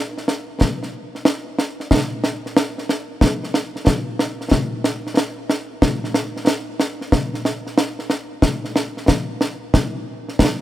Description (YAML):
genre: scottish traditional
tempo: 92 BPM (dotted quarters)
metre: 6/8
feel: straight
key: none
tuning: none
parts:
  - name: concert snare drum and concert bass drum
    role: drums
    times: 0.2-10.5 s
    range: none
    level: -18 LUFS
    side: equal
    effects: none
room: light reverb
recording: none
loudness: -18 LUFS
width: side -14 dB against mid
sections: 0.0-9.7 A section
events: none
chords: none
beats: | 0.60 1.26 | 1.91 2.56 | 3.21 3.87 | 4.52 5.17 | 5.82 6.47 | 7.13 7.78 | 8.43 9.08 | 9.74 10.39